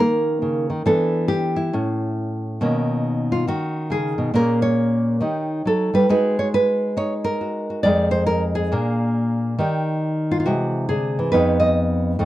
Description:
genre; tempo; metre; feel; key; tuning
solo jazz; 138 BPM; 4/4; swing 65% on 8ths; Eb minor; A4 = 441 Hz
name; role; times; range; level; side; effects
nylon-string guitar; solo; 0.0-12.2 s; F2 to Eb5; -18 LUFS; equal; none
room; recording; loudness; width
studio ambience; dry, close 1970s-style studio recording; -18 LUFS; side -15 dB against mid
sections
0.0-12.2 A section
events
none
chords
0.0 Eb7(no3); 0.9 Em7; 1.7 A; 2.6 Bmaj9; 4.3 Bbm7; 5.2 Eb7alt; 6.1 Abm9; 7.8 Fm7; 8.7 Bb7; 9.6 Ebmaj7; 10.4 C; 11.3 Fm7b5

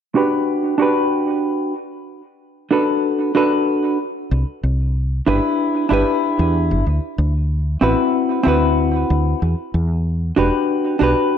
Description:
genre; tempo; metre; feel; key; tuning
sunset chillout; 94 BPM; 4/4; straight; E minor; A4 = 443 Hz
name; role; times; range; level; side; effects
hollow-body jazz guitar; accompaniment; 0.1-11.4 s; C4 to B4; -17 LUFS; equal; auto-pan, low-pass filter, digital delay
woody fretless electric bass; bass; 4.3-11.1 s; E1 to E2; -18 LUFS; equal; none
room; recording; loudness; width
moderate recital hall reverb, RT60 1.5 s, digital ambience; dark, warm production; -16 LUFS; side -8 dB against mid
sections
0.0-9.4 A section; 9.4-11.4 B section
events
filter sweep on hollow-body jazz guitar 0.0-9.4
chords
0.0 Gmaj7/D; 1.8 Bm7; 4.0 Cmaj7; 6.9 D13; 9.4 Em9

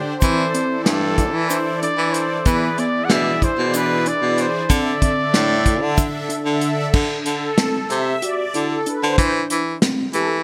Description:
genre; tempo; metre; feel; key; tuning
progressive instrumental, band music in an uneven meter; 187 BPM (eighths); 7/8; straight; unclear; A4 = 441 Hz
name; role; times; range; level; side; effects
brassy analog pad; accompaniment; 0.0-10.3 s; D3 to E5; -27 LUFS; equal; chorus
warm trumpet; melody; 0.2-6.3 s; A4 to F#5; -24 LUFS; equal; digital delay
mellow tine electric piano; arpeggios; 0.2-10.4 s; B3 to G4; -28 LUFS; equal; digital delay
bright baritone saxophone; bass; 0.2-10.4 s; G2 to E3; -23 LUFS; equal; none
warm soul drum kit; drums; 0.2-10.3 s; crash cymbal, hi-hat, kick drum, snare drum; -22 LUFS; equal; gated reverb
egg shaker; percussion; 0.2-6.5 s; none; -36 LUFS; equal; none
room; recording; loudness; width
light reverb, small room ambience; bright 1980s-style digital production; -19 LUFS; mono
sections
0.0-6.9 A section; 6.9-10.4 B section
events
analog synth pad solo 6.9-10.4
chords
0.2 C6; 2.5 E7; 4.7 Dsus2; 6.9 D7(no3); 9.2 C/E

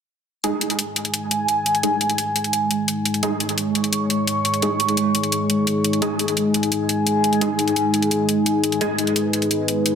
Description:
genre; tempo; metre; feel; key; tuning
dark technical drum and bass; 172 BPM; 4/4; straight; G# minor; A4 = 441 Hz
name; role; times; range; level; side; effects
dark analog pad; sustained chords; 1.0-10.0 s; G#3 to C#6; -20 LUFS; equal; chorus, phaser
orchestra-hit-like synth stab; stabs; 0.4-8.9 s; G#3 to G#4; -27 LUFS; right 1 dB; built-in reverb, dub echo
electronic hi-hat; drums; 0.4-9.9 s; none; -23 LUFS; left 1 dB; overdrive
room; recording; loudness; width
moderate lush hall reverb, RT60 1.7 s, digital ambience; dense, heavily limited modern master; -18 LUFS; side -7 dB against mid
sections
0.4-10.0 A section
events
filter sweep on synth stab 0.4-10.0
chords
0.4 G#5

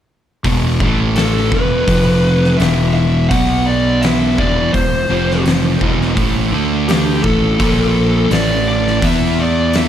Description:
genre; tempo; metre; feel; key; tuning
stoner and doom metal; 84 BPM; 4/4; straight; unclear; A4 = 440 Hz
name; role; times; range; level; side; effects
fuzz guitar; riff; 0.4-9.9 s; E2 to E4; -16 LUFS; right 1 dB; distortion
fuzz fingered electric bass; bass; 0.4-9.9 s; E1 to E2; -19 LUFS; equal; overdrive
oversized low-tuned drum kit; drums; 0.4-9.9 s; hi-hat, kick drum, snare drum; -19 LUFS; equal; none
fuzz lead guitar; melody; 1.2-9.9 s; G4 to F#5; -19 LUFS; left 2 dB; distortion, analog delay
room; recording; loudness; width
light reverb; none; -12 LUFS; side -10 dB against mid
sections
0.4-9.9 A section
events
none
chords
0.4 E5; 0.8 A5; 1.5 E5; 1.9 F5; 2.6 E5; 3.3 B5; 4.4 E5; 5.1 F5; 5.8 E5; 6.2 A5; 6.5 D5; 7.2 A5; 7.6 A#5; 8.3 A5; 9.0 E5

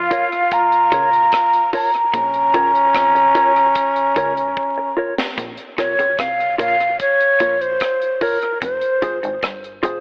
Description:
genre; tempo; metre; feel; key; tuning
roots reggae; 74 BPM; 4/4; straight; Bb dorian; A4 = 440 Hz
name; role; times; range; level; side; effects
breathy mellow concert flute; melody; 0.0-9.4 s; Bb4 to Bb5; -18 LUFS; equal; tape echo
growling trombone; second line; 0.0-4.9 s; Db4 to F4; -25 LUFS; equal; tape echo
deep dub fingered electric bass; bass; 0.0-10.0 s; F1 to F2; -36 LUFS; equal; none
mellow electric guitar; accompaniment; 0.1-10.0 s; F4 to Db5; -28 LUFS; equal; subtle chorus, tape echo
deep reggae drum kit; drums; 0.1-10.0 s; hi-hat, kick drum, rim click, snare drum; -28 LUFS; equal; analog delay
electric guitar at the edge of break-up; riff; 0.9-10.0 s; F2 to F3; -34 LUFS; equal; tremolo
room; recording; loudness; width
light reverb, small room ambience; vinyl crackle, telephone sound; -17 LUFS; mono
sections
0.0-5.4 A section; 5.4-10.0 B section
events
drum fill 4.6-5.4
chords
0.0 Bbm; 8.6 Fm

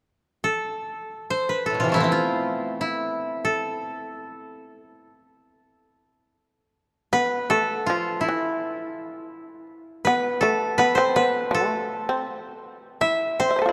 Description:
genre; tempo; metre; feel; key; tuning
japanese traditional; free time; none; none; A hirajoshi; A4 = 439 Hz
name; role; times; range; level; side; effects
koto; melody; 0.4-13.7 s; A2 to E5; -26 LUFS; equal; none
shamisen; second line; 7.1-13.7 s; E3 to E5; -27 LUFS; equal; none
room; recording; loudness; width
wet church reverb, RT60 3.4 s; dark, warm production; -24 LUFS; mono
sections
0.0-7.1 A section; 7.1-13.7 B section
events
none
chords
none

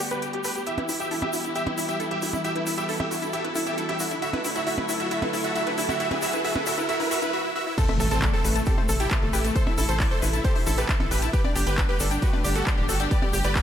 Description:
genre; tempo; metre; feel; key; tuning
uplifting trance; 135 BPM; 4/4; straight; unclear; A4 = 440 Hz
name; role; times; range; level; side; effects
big supersaw lead; melody; 0.0-13.6 s; A3 to E5; -29 LUFS; equal; sidechain pumping, low-pass filter, ping-pong delay
warm concert grand piano; second line; 0.0-13.6 s; A3 to E5; -33 LUFS; equal; sidechain pumping, low-pass filter, ping-pong delay
dark chamber string section; sustained chords; 0.0-13.6 s; C3 to A4; -33 LUFS; equal; sidechain pumping
analog pluck; arpeggios; 0.0-13.6 s; E4 to A5; -32 LUFS; left 1 dB; chorus, sidechain pumping, ping-pong delay
tight sequencer bass; bass; 0.0-13.6 s; D1 to D2; -29 LUFS; equal; sidechain pumping, high-pass filter
techno drum kit; drums; 0.0-13.6 s; crash cymbal, handclaps, hi-hat, percussion blips; -32 LUFS; right 1 dB; none
egg shaker; percussion; 0.0-13.6 s; none; -36 LUFS; left 4 dB; none
riser and impact; sound effects; 2.5-9.6 s; none; -34 LUFS; right 1 dB; none
electronic kick drum; drums; 7.8-13.6 s; none; -25 LUFS; equal; none
room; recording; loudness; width
light reverb; none; -22 LUFS; side -9 dB against mid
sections
0.0-7.8 A section; 7.8-13.6 B section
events
build-up 0.0-7.8; filter sweep on synth pluck 0.0-7.8; riser 2.5-7.3; break 7.3-7.8; drop 7.8-13.6; impact 7.8-9.6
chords
0.0 Gadd9; 0.7 Emadd9; 4.2 D; 7.8 Am; 11.3 Gadd9

